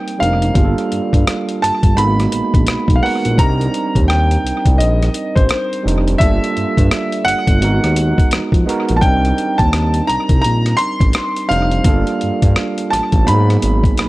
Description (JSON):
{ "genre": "R&B, neo-soul", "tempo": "85 BPM", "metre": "4/4", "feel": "swing 62% on 16ths", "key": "C dorian", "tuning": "A4 = 440 Hz", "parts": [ { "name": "clear concert grand piano", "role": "melody", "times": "0.0-14.1 s", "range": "C5 to C6", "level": "-19 LUFS", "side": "equal", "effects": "none" }, { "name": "overdriven tine electric piano", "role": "accompaniment", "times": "0.0-14.1 s", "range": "Gb3 to C5", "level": "-20 LUFS", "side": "right 3 dB", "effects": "analog delay" }, { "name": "boom bap sampler-style drum kit", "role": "drums", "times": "0.1-14.1 s", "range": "hi-hat, kick drum, rim click", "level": "-16 LUFS", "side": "equal", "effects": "none" }, { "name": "smooth synth bass", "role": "bass", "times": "0.2-14.1 s", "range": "F1 to Ab2", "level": "-16 LUFS", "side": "equal", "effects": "none" } ], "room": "digital ambience", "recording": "echo-heavy mix", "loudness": "-12 LUFS", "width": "side -19 dB against mid", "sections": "0.0-14.1 A section", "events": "none", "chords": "0.0 Cm9; 0.6 Gm9; 2.0 Abm9; 3.4 Cm9; 6.2 Gm9; 7.6 Abm9; 9.0 Cm9; 11.8 Gm9; 13.3 Abm9", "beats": "| 0.55 1.26 1.96 2.67 | 3.38 4.08 4.79 5.49 | 6.20 6.90 7.61 8.32 | 9.02 9.73 10.43 11.14 | 11.85 12.55 13.26 13.96" }